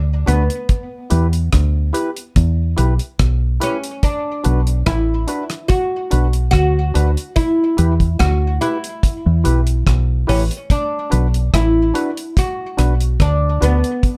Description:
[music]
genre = roots reggae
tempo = 72 BPM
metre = 4/4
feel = straight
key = B minor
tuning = A4 = 440 Hz
[part]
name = deep dub fingered electric bass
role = bass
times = 0.0-13.8 s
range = A1 to E2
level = -18 LUFS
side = equal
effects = none
[part]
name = oud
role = melody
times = 0.3-14.2 s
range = B3 to F#4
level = -24 LUFS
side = equal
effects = tape echo
[part]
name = percussive organ stab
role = stabs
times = 0.3-13.8 s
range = D4 to B4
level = -25 LUFS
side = equal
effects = chorus
[part]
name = damped 70s drum kit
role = drums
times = 0.3-14.2 s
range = hi-hat, kick drum, rim click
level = -21 LUFS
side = equal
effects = none
[sound]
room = light reverb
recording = dark, warm production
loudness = -17 LUFS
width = mono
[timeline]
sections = 0.0-14.2 A section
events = none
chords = 0.0 Bm; 0.7 Em; 4.0 Bm; 7.4 Em; 10.7 Bm

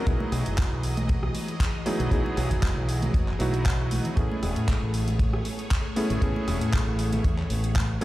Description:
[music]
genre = nu-disco, nu disco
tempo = 117 BPM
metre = 4/4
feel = swing 54% on 16ths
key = unclear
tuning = A4 = 440 Hz
[part]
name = warm electric grand piano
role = accompaniment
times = 0.0-8.0 s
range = F#3 to G#4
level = -31 LUFS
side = right 1 dB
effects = vintage 12-bit sampler grit, tape echo
[part]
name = string machine, full ensemble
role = sustained chords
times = 0.0-8.0 s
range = E3 to D#5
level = -34 LUFS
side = left 1 dB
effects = ensemble chorus, sidechain pumping
[part]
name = fingered electric bass with an envelope filter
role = bass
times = 0.1-8.0 s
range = E1 to A2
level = -27 LUFS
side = equal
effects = sidechain pumping
[part]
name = kick drum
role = drums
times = 0.1-7.9 s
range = none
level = -24 LUFS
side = equal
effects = none
[part]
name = pop drum kit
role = drums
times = 0.1-8.0 s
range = handclaps, hi-hat, rim click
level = -35 LUFS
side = equal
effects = overdrive
[part]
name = congas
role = percussion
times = 0.2-8.0 s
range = none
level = -35 LUFS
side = right 1 dB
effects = none
[sound]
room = light reverb, small room ambience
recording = played on a big sound system in a bare room, stone room reverb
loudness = -23 LUFS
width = side -16 dB against mid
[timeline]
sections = 0.0-8.0 A section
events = none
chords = 0.1 Emaj7; 4.2 Amaj7

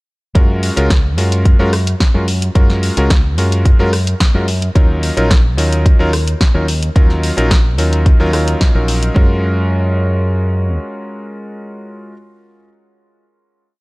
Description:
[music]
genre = nu-disco, nu disco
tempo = 109 BPM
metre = 4/4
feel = straight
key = F# major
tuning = A4 = 440 Hz
[part]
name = clear electric grand piano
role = accompaniment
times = 0.3-12.1 s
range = F#3 to A#4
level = -19 LUFS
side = equal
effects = sidechain pumping, analog delay
[part]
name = fingered electric bass with an envelope filter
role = bass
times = 0.4-10.8 s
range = A#1 to F#2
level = -16 LUFS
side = equal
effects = none
[part]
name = electronic kick drum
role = drums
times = 0.4-9.3 s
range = none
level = -10 LUFS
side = equal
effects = none
[part]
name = house drum kit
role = drums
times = 0.4-9.1 s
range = hi-hat, rim click, snare drum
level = -21 LUFS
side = equal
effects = none
[sound]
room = little or no reverb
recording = dark, warm production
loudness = -11 LUFS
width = side -24 dB against mid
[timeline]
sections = 0.4-9.2 drop; 9.2-11.4 final chord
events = drop 0.4-9.2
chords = 0.4 F#maj7; 4.8 D#m7; 9.2 F#maj7

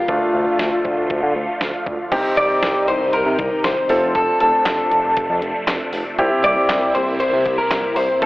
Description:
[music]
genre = synth-pop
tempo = 118 BPM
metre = 4/4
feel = straight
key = unclear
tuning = A4 = 442 Hz
[part]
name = electric guitar at the edge of break-up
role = melody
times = 0.0-8.3 s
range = F4 to D5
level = -18 LUFS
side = left 1 dB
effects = spring reverb
[part]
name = phased string machine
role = sustained chords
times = 0.0-8.3 s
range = C3 to F4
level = -26 LUFS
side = equal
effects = ensemble chorus, phaser
[part]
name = clear concert grand piano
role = accompaniment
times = 0.1-8.3 s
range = A3 to A4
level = -22 LUFS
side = equal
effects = none
[part]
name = smooth synth bass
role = bass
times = 0.1-8.3 s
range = F1 to D3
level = -25 LUFS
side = equal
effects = none
[part]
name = detuned 8-bit digital drum machine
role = drums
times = 0.1-8.3 s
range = crash cymbal, handclaps, hi-hat, kick drum, snare drum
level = -24 LUFS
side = equal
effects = none
[sound]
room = light reverb, digital ambience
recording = dry, gritty hardware recording, transformer saturation, telephone sound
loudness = -16 LUFS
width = side -19 dB against mid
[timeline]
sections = 0.0-2.1 A section; 2.1-8.3 B section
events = none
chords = 0.1 Dm; 2.1 Cm; 3.9 F6; 6.2 C7

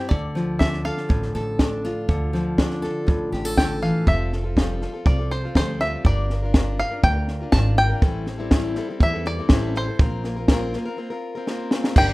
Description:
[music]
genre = indie folk with a building arrangement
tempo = 122 BPM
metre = 4/4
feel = straight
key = unclear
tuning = A4 = 439 Hz
[part]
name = bluegrass banjo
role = melody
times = 0.0-12.1 s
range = C5 to A5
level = -25 LUFS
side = equal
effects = none
[part]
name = fingerpicked steel-string acoustic guitar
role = accompaniment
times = 0.0-6.0 s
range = G2 to A4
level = -25 LUFS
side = left 1 dB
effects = none
[part]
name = upright bass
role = bass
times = 0.1-12.1 s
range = F1 to E2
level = -26 LUFS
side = equal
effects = none
[part]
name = compact cocktail drum kit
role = drums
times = 0.1-12.1 s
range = crash cymbal, kick drum, snare drum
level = -19 LUFS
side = equal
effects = none
[part]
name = picked plugged-in steel-string acoustic guitar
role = accompaniment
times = 4.1-12.1 s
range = A2 to Bb4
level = -29 LUFS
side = left 2 dB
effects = none
[sound]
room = light reverb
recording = rough home demo mix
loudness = -19 LUFS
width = side -20 dB against mid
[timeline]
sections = 0.0-4.1 A section; 4.1-12.0 B section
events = break 11.0-12.0; drum fill 11.5-12.0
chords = 0.1 Dm; 4.1 Fadd9; 6.1 Gm7; 8.0 Am7; 10.0 Bbsus2

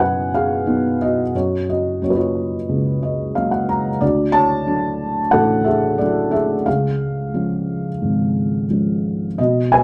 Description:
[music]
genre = classical, lyrical solo piano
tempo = 89 BPM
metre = 4/4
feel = rubato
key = unclear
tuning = A4 = 439 Hz
[part]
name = felt-muted upright piano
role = solo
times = 0.0-9.8 s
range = G#1 to A#5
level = -19 LUFS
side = equal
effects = none
[sound]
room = moderate studio reverb, RT60 0.6 s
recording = none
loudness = -19 LUFS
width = mono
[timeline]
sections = 0.0-9.8 A section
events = felt piano fill 2.7-4.0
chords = 0.0 B; 1.3 F#; 4.0 D; 6.7 C#

